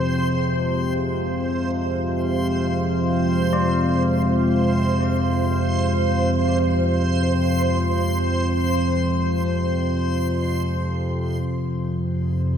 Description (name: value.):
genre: dark ambient drone.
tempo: free time.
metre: none.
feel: none.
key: F minor.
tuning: A4 = 438 Hz.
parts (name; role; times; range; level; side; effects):
dark analog pad; sustained chords; 0.0-11.4 s; Ab3 to F5; -28 LUFS; right 1 dB; chorus.
analog drone; drone; 0.0-12.6 s; F2 to C3; -21 LUFS; equal; chorus.
backwards swelling texture; texture; 0.0-12.6 s; Ab4 to C5; -27 LUFS; right 1 dB; built-in reverb.
gamelan-type bronze metallophone; arpeggios; 3.5-9.4 s; Ab3; -29 LUFS; equal; tape echo.
room: wet cathedral reverb, RT60 6.4 s.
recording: none.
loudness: -19 LUFS.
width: side -8 dB against mid.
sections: 0.0-11.4 A section; 11.4-12.6 B section.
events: fade-in on analog synth pad 0.0-11.4.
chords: 0.0 Fm.